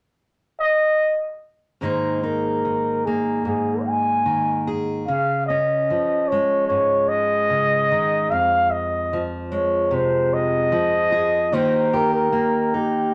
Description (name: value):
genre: acoustic folk-pop ballad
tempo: 74 BPM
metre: 4/4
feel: straight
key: Ab major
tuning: A4 = 439 Hz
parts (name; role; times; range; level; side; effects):
- breathy flugelhorn; melody; 0.6-13.1 s; G4 to Ab5; -22 LUFS; equal; none
- fingerpicked steel-string acoustic guitar; accompaniment; 1.8-13.1 s; F2 to Ab4; -26 LUFS; equal; none
room: wet studio reverb, RT60 0.6 s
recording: none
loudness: -21 LUFS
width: mono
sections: 0.0-1.8 A section; 1.8-13.1 B section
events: none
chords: 0.0 N.C.; 1.8 Absus2; 5.1 Db; 8.3 Fm; 11.5 Eb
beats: 0.20 1.01 | 1.82 2.64 3.46 4.26 | 5.07 5.88 6.69 7.50 | 8.31 9.11 9.92 10.72 | 11.53 12.33 13.14